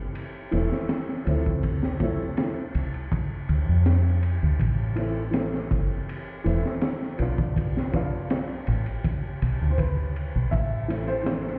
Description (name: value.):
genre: trip hop.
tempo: 81 BPM.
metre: 4/4.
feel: straight.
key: A minor.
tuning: A4 = 442 Hz.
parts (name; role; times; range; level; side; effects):
dark upright piano; accompaniment; 0.0-11.6 s; E3 to F4; -33 LUFS; equal; harmonic tremolo, vintage 12-bit sampler grit, tape echo.
crunchy breakbeat drum kit; drums; 0.2-11.6 s; kick drum, ride cymbal, snare drum; -31 LUFS; equal; none.
deep dub fingered electric bass; bass; 0.5-11.6 s; E1 to F2; -27 LUFS; equal; none.
felt-muted upright piano; melody; 9.7-11.6 s; B4 to E5; -34 LUFS; equal; vintage 12-bit sampler grit, tape echo.
room: small room ambience.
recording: heard muffled through a wall, stone room reverb, vinyl crackle, EQ.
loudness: -26 LUFS.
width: mono.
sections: 0.0-11.6 A section.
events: none.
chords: 0.0 Am; 1.6 Dm7; 4.6 Am; 7.6 Bdim; 10.5 Am.